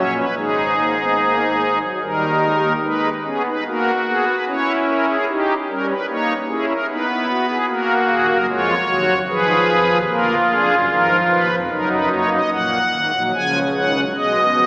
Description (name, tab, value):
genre	classical, baroque-style 4-part fugue for pipe organ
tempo	74 BPM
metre	3/4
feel	straight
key	unclear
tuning	A4 = 440 Hz
part	pipe organ, strings celeste	solo	0.0-14.7 s	D1 to Ab5	-15 LUFS	equal	none
room	wet church reverb, RT60 3.2 s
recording	recorded in a church or concert hall, small speaker sound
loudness	-15 LUFS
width	side -25 dB against mid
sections	0.0-2.8 A section; 2.8-12.5 B section; 12.5-14.7 C section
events	none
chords	0.4 D#sus4/G#; 2.0 D#; 2.8 G#m; 4.5 A#dim/C#; 5.3 D#7; 6.9 G#m/B; 7.7 D#m; 9.3 Fdim/Ab; 10.1 A#7/D; 11.7 D#m/F#; 12.5 Ebm; 14.2 Fdim/Cb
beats	| 0.37 1.19 2.02 | 2.84 3.66 4.47 | 5.28 6.09 6.89 | 7.69 8.50 9.30 | 10.11 10.91 11.72 | 12.53 13.35 14.16